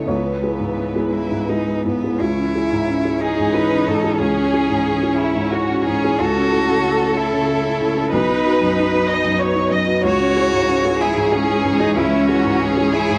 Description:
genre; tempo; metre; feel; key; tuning
neoclassical piano and strings; 54-63 BPM (dotted quarters); 6/8; rubato; C# minor; A4 = 442 Hz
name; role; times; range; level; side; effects
clear cello; second line; 0.0-13.2 s; B3 to F#4; -24 LUFS; equal; none
felt-muted upright piano; accompaniment; 0.0-13.2 s; B1 to E5; -22 LUFS; equal; none
warm symphonic string section; sustained chords; 0.0-13.2 s; E3 to C#5; -29 LUFS; equal; none
rich chamber violin section; melody; 3.2-13.2 s; E4 to D#5; -23 LUFS; equal; none
room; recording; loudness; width
moderate plate reverb, RT60 2.8 s; none; -18 LUFS; mono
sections
0.0-2.2 A section; 2.2-13.2 A section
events
none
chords
0.1 C#m7; 2.2 C#m; 6.2 A/C#; 8.1 B; 10.0 C#m

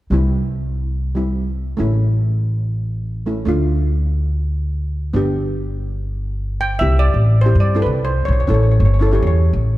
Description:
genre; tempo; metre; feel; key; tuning
calypso; 143 BPM; 4/4; straight; C major; A4 = 440 Hz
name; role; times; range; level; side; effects
steel pan; accompaniment; 0.1-9.6 s; G3 to A4; -23 LUFS; equal; none
upright bass; bass; 0.1-9.8 s; G1 to G2; -17 LUFS; equal; none
steel pan; melody; 6.6-9.4 s; B4 to G5; -22 LUFS; right 1 dB; none
room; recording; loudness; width
light reverb; none; -16 LUFS; side -16 dB against mid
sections
0.1-6.8 A section; 6.8-9.8 B section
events
none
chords
0.1 C; 1.8 A; 3.5 Dm; 5.1 G; 6.8 Cadd9; 8.5 A

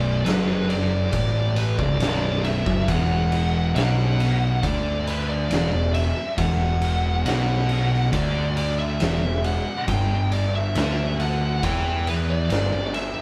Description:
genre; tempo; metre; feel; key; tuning
stoner and doom metal; 69 BPM; 4/4; straight; unclear; A4 = 440 Hz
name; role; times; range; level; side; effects
fuzz lead guitar; melody; 0.0-13.2 s; B4 to G5; -30 LUFS; equal; distortion
thick fuzz guitar; riff; 0.0-13.1 s; B1 to E3; -28 LUFS; equal; distortion
thick fuzz guitar; riff; 0.0-13.1 s; B1 to E3; -30 LUFS; equal; none
fuzz picked electric bass; bass; 0.0-13.1 s; B0 to E2; -28 LUFS; equal; overdrive
oversized low-tuned drum kit; drums; 0.3-13.1 s; kick drum, ride cymbal, snare drum; -30 LUFS; equal; none
room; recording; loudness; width
moderate studio reverb, RT60 0.5 s; band playing live in one room; -22 LUFS; mono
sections
0.0-13.2 A section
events
none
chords
0.0 Bm; 2.9 E5; 9.9 G5

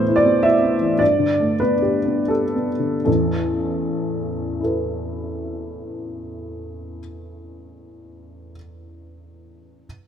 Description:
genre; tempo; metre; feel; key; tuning
neoclassical minimalist piano; 76-113 BPM; 3/4; rubato; unclear; A4 = 443 Hz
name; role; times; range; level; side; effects
dark upright piano; solo; 0.0-9.9 s; A1 to E5; -19 LUFS; equal; none
room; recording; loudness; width
light reverb; close, detailed microphones; -18 LUFS; side -8 dB against mid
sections
0.0-3.1 A section; 3.1-7.7 B section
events
slowing down 0.0-3.1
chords
0.0 Amadd9; 1.0 Gadd9; 3.1 Asus2

